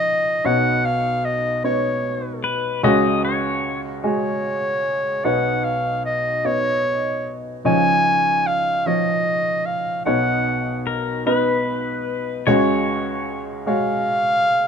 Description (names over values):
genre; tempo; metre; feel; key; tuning
acoustic folk-pop ballad; 50 BPM (dotted quarters); 6/8; straight; unclear; A4 = 440 Hz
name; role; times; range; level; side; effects
warm clarinet; melody; 0.0-14.7 s; C#5 to G#5; -20 LUFS; equal; none
warm upright piano; accompaniment; 0.0-14.7 s; B1 to D#5; -21 LUFS; equal; none
pedal steel guitar; second line; 2.4-3.8, 10.9-13.4 s; A#4 to D#5; -24 LUFS; left 5 dB; none
room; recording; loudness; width
light reverb; minimal, uncompressed stereo recording; -18 LUFS; side -6 dB against mid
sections
0.0-14.7 A section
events
none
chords
0.4 Badd9; 2.8 F#sus2/C#; 5.2 Badd9; 7.7 C#add9; 10.1 Badd9; 12.5 F#sus2/C#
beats
| 0.45 1.65 | 2.84 4.04 | 5.25 6.45 | 7.66 8.87 | 10.07 11.27 | 12.47 13.67